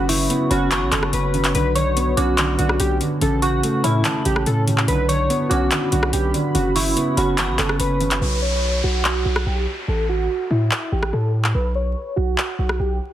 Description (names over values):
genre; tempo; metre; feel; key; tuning
hip hop, trap; 144 BPM; 4/4; half-time; B minor; A4 = 440 Hz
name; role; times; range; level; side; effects
warbly lo-fi synth keys; melody; 0.0-13.0 s; E4 to C#5; -24 LUFS; right 1 dB; chorus, low-pass filter, digital delay
felt-muted upright piano; accompaniment; 0.0-8.2 s; C#3 to C#4; -23 LUFS; right 1 dB; none
deep dark ambient pad; sustained chords; 0.0-8.2 s; E4 to C#6; -30 LUFS; equal; chorus, built-in reverb
hard-hitting 808-style bass; bass; 0.0-13.0 s; F#1 to A2; -22 LUFS; equal; none
dark detuned synth bell; second line; 0.1-7.8 s; A5 to D6; -29 LUFS; equal; chorus, digital delay
trap drum kit; drums; 0.1-12.8 s; handclaps, hi-hat, rim click; -23 LUFS; left 1 dB; none
downlifter; sound effects; 8.2-11.5 s; none; -29 LUFS; equal; none
room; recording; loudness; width
digital ambience; dense, heavily limited modern master, vinyl crackle; -17 LUFS; side -12 dB against mid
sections
0.0-8.2 A section; 8.2-13.1 B section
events
break 8.2-13.1; filter sweep on synth keys 8.2-13.1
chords
0.0 F#sus4; 1.5 Bmadd9; 3.2 A; 4.9 Bmadd9; 6.5 F#sus4; 8.2 Bsus2; 9.9 A5; 11.5 Bsus2